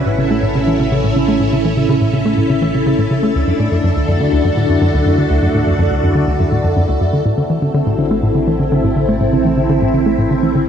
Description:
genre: ambient, sequencer-driven space music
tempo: 123 BPM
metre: 4/4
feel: straight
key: A dorian from 7.3 s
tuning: A4 = 441 Hz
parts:
  - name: string machine, full ensemble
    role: sustained chords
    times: 0.0-10.7 s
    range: C4 to B4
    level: -16 LUFS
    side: equal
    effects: phaser, ensemble chorus
  - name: tight sequencer bass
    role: riff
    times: 0.0-10.6 s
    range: D2 to A3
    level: -15 LUFS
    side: equal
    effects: tape echo
  - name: analog drone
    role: bass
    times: 0.0-10.7 s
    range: A1 to D2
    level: -24 LUFS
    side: equal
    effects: chorus
  - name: bubbling stepped-filter texture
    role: texture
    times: 0.0-7.3 s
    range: E4 to E5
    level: -28 LUFS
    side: right 1 dB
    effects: chorus, built-in reverb
room: light reverb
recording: none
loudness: -12 LUFS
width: side -8 dB against mid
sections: 0.0-7.3 A section; 7.3-10.7 B section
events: none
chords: 0.0 A; 3.4 D; 7.3 Am

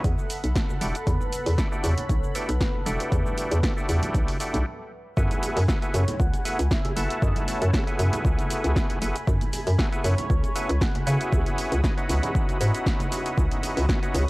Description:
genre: deep house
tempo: 117 BPM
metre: 4/4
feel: swing 54% on 16ths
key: F# dorian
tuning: A4 = 440 Hz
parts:
  - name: warm analog pad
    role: sustained chords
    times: 0.0-14.3 s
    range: A3 to D#6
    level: -37 LUFS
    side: equal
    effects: chorus, sidechain pumping
  - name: overdriven tonewheel organ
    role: stabs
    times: 0.0-14.3 s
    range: A3 to A4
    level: -30 LUFS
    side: equal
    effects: chorus vibrato, sidechain pumping, tape echo
  - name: hollow knocking FM bass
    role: bass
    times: 0.0-14.3 s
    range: E1 to C#3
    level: -24 LUFS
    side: equal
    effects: sidechain pumping
  - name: electronic kick drum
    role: drums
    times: 0.0-14.0 s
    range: none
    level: -25 LUFS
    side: equal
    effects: overdrive
  - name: punchy analog drum machine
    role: drums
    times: 0.0-14.3 s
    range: cabasa, hi-hat, snare drum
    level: -32 LUFS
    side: equal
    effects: overdrive
  - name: congas and bongos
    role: percussion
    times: 0.2-14.3 s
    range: none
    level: -36 LUFS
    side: right 2 dB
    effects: none
  - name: warm velvety synth lead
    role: melody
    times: 1.1-14.3 s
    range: A4 to F#5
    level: -36 LUFS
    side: equal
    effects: chorus, tape echo
room: digital ambience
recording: dry, gritty hardware recording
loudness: -22 LUFS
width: side -21 dB against mid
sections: 0.0-5.2 A section; 5.2-14.3 B section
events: stop 4.7-5.2; drop 5.2-14.3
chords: 0.0 Em11; 5.2 F#m11; 11.1 C#m11

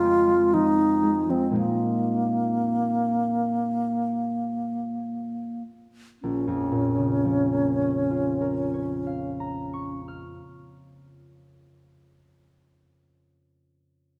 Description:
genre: classical, impressionist duo for alto flute and harp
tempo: 47-62 BPM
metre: 4/4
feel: rubato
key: Bb minor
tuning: A4 = 439 Hz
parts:
  - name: alto flute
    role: melody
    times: 0.0-10.0 s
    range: Bb3 to F4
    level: -26 LUFS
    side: equal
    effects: none
  - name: concert harp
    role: accompaniment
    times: 0.0-12.4 s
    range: Bb1 to F6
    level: -31 LUFS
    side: equal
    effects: none
room: moderate scoring stage reverb, RT60 1.6 s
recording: none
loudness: -25 LUFS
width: mono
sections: 0.0-6.2 A section; 6.2-10.9 B section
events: slowing down 0.0-6.2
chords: 0.0 Fm; 1.6 Bb9sus4; 6.2 Bbm

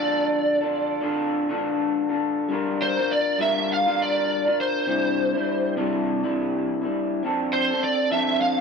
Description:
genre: indie pop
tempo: 102 BPM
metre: 4/4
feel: swing 60% on 16ths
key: D minor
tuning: A4 = 441 Hz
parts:
  - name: overdriven slide guitar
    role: melody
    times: 0.0-8.6 s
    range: C5 to F5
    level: -22 LUFS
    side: right 1 dB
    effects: ensemble chorus, slapback echo
  - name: electric guitar through a small old amp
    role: accompaniment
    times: 0.0-8.6 s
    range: C3 to Bb4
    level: -24 LUFS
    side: left 2 dB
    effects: lush chorus, vibrato effect
room: light reverb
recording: dry, close 1970s-style studio recording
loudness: -21 LUFS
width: side -5 dB against mid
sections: 0.0-8.6 A section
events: none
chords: 0.0 Dm; 2.5 Gm7; 4.9 Cadd9; 7.2 F6

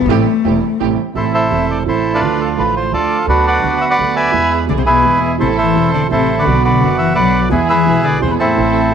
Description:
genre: tango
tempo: 170 BPM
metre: 3/4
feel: rubato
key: A harmonic minor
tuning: A4 = 443 Hz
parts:
  - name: warm cello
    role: second line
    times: 0.0-0.8, 4.7-8.9 s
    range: A2 to B3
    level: -17 LUFS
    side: left 10 dB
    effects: none
  - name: warm concert grand piano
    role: accompaniment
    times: 0.0-8.9 s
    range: E1 to A4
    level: -19 LUFS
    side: right 13 dB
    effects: none
  - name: upright bass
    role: bass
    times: 0.0-8.9 s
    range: E1 to E2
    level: -21 LUFS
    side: right 1 dB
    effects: none
  - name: warm studio string section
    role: stabs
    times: 0.1-8.9 s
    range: A3 to A4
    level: -24 LUFS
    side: right 13 dB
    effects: none
  - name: bandoneon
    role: melody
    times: 1.2-8.9 s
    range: C4 to G#5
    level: -14 LUFS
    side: equal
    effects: none
room: light reverb, studio ambience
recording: 1960s-style stereo with parts hard left and right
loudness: -12 LUFS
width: side -8 dB against mid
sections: 0.0-1.2 A section; 1.2-8.9 B section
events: cello solo 0.0-1.2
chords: 0.1 Am7; 1.2 Am; 2.2 Dm; 3.3 Bm/D; 4.3 E; 5.4 Am; 6.5 Bm; 7.5 E

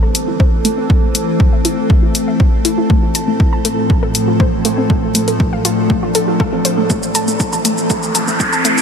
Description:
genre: melodic techno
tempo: 120 BPM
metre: 4/4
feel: straight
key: A minor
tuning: A4 = 440 Hz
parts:
  - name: evolving wavetable pad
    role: sustained chords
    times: 0.0-8.8 s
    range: A2 to A4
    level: -17 LUFS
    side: equal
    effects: chorus, built-in reverb, sidechain pumping
  - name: warbly dusty pluck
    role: arpeggios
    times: 0.0-8.7 s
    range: A3 to A5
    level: -20 LUFS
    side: equal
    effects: chorus, sidechain pumping, diffuse ambient delay
  - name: punchy analog drum machine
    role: drums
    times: 0.1-8.8 s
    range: hi-hat, shaker, toms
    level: -18 LUFS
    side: left 1 dB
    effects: overdrive, high-pass filter on hats, high-pass filter on snare, high-pass filter on toms, high-pass filter on perc
  - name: electronic kick drum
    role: drums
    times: 0.4-8.5 s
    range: none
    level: -14 LUFS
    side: equal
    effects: overdrive
  - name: riser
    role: sound effects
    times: 7.7-8.8 s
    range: none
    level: -19 LUFS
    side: equal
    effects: none
room: moderate huge ambient reverb, RT60 7.3 s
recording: dreamy mix soaked in reverb, high-pass filter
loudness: -12 LUFS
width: side -7 dB against mid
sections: 0.0-8.8 A section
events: build-up 0.0-8.8; filter sweep on synth arpeggio sound 0.0-8.8; filter sweep 0.0-8.8; drum fill 6.9-8.8; riser 7.7-8.8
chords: 0.0 Am; 2.9 F/A; 6.9 Am

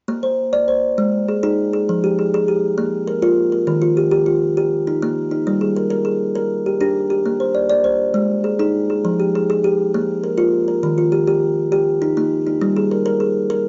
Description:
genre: southern african traditional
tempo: 134 BPM (dotted quarters)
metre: 12/8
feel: straight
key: Bb mixolydian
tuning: A4 = 441 Hz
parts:
  - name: kalimba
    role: arpeggios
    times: 0.1-13.7 s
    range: Eb3 to D5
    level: -18 LUFS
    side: equal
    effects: none
room: light reverb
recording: dark, warm production, nothing above 7.5 kHz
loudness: -18 LUFS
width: mono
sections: 0.1-13.7 A section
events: none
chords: 0.1 Bb; 1.0 Ab; 1.9 Fm; 2.8 Bb5; 3.7 Eb; 5.5 Gm; 7.2 Bb; 8.1 Ab; 9.0 Fm; 9.9 Bb5; 10.8 Eb; 12.6 Gm

